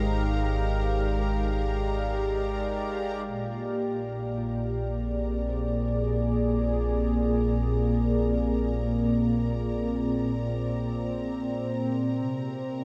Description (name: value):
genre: ambient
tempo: 54 BPM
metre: 4/4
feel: straight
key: unclear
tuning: A4 = 440 Hz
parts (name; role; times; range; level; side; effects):
- warm analog pad; sustained chords; 0.0-12.8 s; Bb2 to F5; -29 LUFS; equal; chorus, tremolo
- deep rumbling drone; bass; 0.0-12.8 s; Ab1 to C2; -33 LUFS; equal; built-in reverb
- bright symphonic violin section; texture; 0.0-12.8 s; Bb4 to Bb5; -45 LUFS; equal; none
- handpan; arpeggios; 4.4-9.3 s; F4 to D5; -52 LUFS; equal; none
room: wet huge ambient reverb, RT60 7.9 s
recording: dark, warm production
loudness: -28 LUFS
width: mono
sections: 0.0-3.3 A section; 3.3-12.8 B section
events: fade-in on violin section 3.3-12.8; filter sweep on analog synth pad 3.3-12.8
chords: 0.0 Ebmaj7/Ab; 3.3 Bb13; 12.2 C7sus2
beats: 1.05 2.16 | 3.27 4.38 5.49 6.60 | 7.71 8.82 9.94 11.05 | 12.16